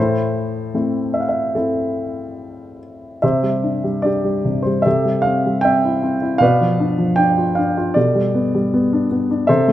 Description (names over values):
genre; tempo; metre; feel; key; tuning
classical, lyrical solo piano; 69-82 BPM; 4/4; rubato; A minor; A4 = 443 Hz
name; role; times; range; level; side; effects
warm concert grand piano; solo; 0.0-9.7 s; A2 to G5; -16 LUFS; equal; none
room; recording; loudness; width
moderate scoring stage reverb, RT60 1.7 s; none; -16 LUFS; side -13 dB against mid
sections
0.0-3.2 A section; 3.2-9.7 B section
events
none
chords
0.0 Am; 3.2 Csus2; 4.9 Am7/C; 6.4 Bdim; 8.0 Gadd9/B